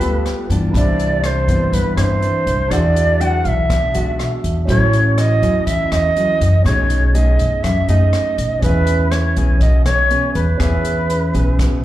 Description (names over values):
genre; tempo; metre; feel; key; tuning
bossa nova; 122 BPM; 4/4; straight; E major; A4 = 440 Hz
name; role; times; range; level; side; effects
mellow shakuhachi; melody; 0.0-11.8 s; B4 to G5; -19 LUFS; right 1 dB; slapback echo
nylon-string guitar; accompaniment; 0.0-11.8 s; F#2 to A4; -22 LUFS; left 1 dB; slapback echo
warm concert grand piano; accompaniment; 0.0-11.8 s; C4 to B5; -27 LUFS; right 4 dB; slapback echo
upright bass; bass; 0.0-11.8 s; A1 to G2; -16 LUFS; equal; none
open jazz drum kit; drums; 0.0-11.7 s; hi-hat, kick drum, rim click; -23 LUFS; equal; none
room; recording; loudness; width
light reverb; live gig heard through the venue's PA, club reverb; -13 LUFS; side -14 dB against mid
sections
0.0-11.8 A section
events
grand piano fill 3.9-4.7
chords
0.0 G9; 0.7 Cmaj9; 2.7 E9; 4.7 A6; 6.7 B13; 8.6 E6